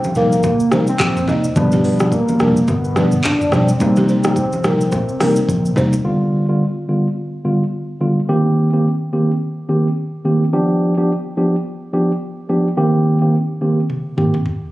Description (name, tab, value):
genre	afrobeats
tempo	107 BPM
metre	4/4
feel	swing 58% on 16ths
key	C minor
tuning	A4 = 440 Hz
part	soft octave-layered synth lead	melody	0.0-5.8 s	Bb3 to D4	-19 LUFS	equal	chorus, digital delay
part	afro-pop drum kit	drums	0.0-6.0, 13.9-14.6 s	handclaps, hi-hat, kick drum, rim click, shaker, toms	-22 LUFS	equal	none
part	congas	percussion	0.0-5.9 s	none	-24 LUFS	equal	none
part	mellow tine electric piano	accompaniment	0.2-14.4 s	B2 to G4	-16 LUFS	equal	none
part	balafon	riff	0.2-5.9 s	G4 to Eb5	-24 LUFS	equal	digital delay
part	fingered electric bass	bass	0.2-6.0 s	F1 to C2	-19 LUFS	equal	none
room	moderate plate reverb, RT60 2.3 s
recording	recorded on a phone in the room, club reverb, compression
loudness	-14 LUFS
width	side -17 dB against mid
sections	0.0-6.0 A section; 6.0-14.7 B section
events	drum fill 5.5-6.0, 13.9-14.7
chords	0.0 Cm7; 1.6 G7; 3.8 Cm7; 6.0 G7; 8.3 Cm7; 10.5 G7; 12.8 Cm7